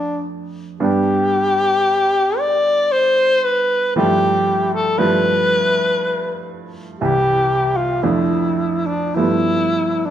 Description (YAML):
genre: classical, romantic duo for alto saxophone and grand piano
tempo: 49-61 BPM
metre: 3/4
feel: rubato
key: unclear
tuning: A4 = 439 Hz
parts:
  - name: clear alto saxophone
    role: melody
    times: 0.0-10.1 s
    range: D4 to D5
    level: -16 LUFS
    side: left 2 dB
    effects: none
  - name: bright baby grand piano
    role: accompaniment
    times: 0.0-10.1 s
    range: C2 to E4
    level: -21 LUFS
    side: right 4 dB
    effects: none
room: moderate recital hall reverb, RT60 1.4 s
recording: none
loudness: -15 LUFS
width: side -10 dB against mid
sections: 0.0-10.1 A section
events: none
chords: 0.0 Dm/F; 0.8 G; 4.0 G13; 7.0 C; 8.0 Dm/F; 9.2 G9